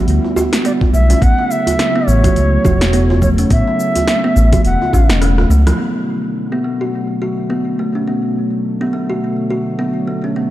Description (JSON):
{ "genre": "organic downtempo", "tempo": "105 BPM", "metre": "4/4", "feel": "swing 58% on 16ths", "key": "B minor", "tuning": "A4 = 443 Hz", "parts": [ { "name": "warm analog pad", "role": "sustained chords", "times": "0.0-10.5 s", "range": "B2 to E4", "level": "-22 LUFS", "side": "equal", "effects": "chorus, sidechain pumping" }, { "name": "kalimba", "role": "arpeggios", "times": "0.0-10.5 s", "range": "A3 to F#4", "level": "-19 LUFS", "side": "equal", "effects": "low-pass filter, digital delay" }, { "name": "smooth synth bass", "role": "bass", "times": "0.1-5.7 s", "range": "E1 to D2", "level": "-13 LUFS", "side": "equal", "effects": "tube saturation, sidechain pumping" }, { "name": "deep house drum kit", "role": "drums", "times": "0.1-5.8 s", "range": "congas, hi-hat, rim click, shaker, snare drum", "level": "-21 LUFS", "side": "right 1 dB", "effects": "overdrive" }, { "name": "djembe", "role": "percussion", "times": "0.2-5.8 s", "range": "none", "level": "-24 LUFS", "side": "right 2 dB", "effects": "none" }, { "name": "reedy bansuri", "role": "melody", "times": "0.7-5.2 s", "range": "C#5 to F#5", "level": "-19 LUFS", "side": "right 1 dB", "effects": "digital delay" }, { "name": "electronic kick drum", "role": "drums", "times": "0.8-5.1 s", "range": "none", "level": "-15 LUFS", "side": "equal", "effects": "none" } ], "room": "light reverb", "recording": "dark, warm production", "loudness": "-12 LUFS", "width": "side -14 dB against mid", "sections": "0.0-5.8 A section; 5.8-10.5 B section", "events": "kick drops out 5.2-5.8; drum fill 5.2-5.8; band accent 5.6", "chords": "0.0 G6; 1.2 F#m7; 5.8 Bm7", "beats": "0.08 0.65 | 1.22 1.79 2.36 2.93 | 3.50 4.08 4.65 5.22 | 5.79 6.36 6.93 7.50 | 8.08 8.65 9.22 9.79 | 10.36" }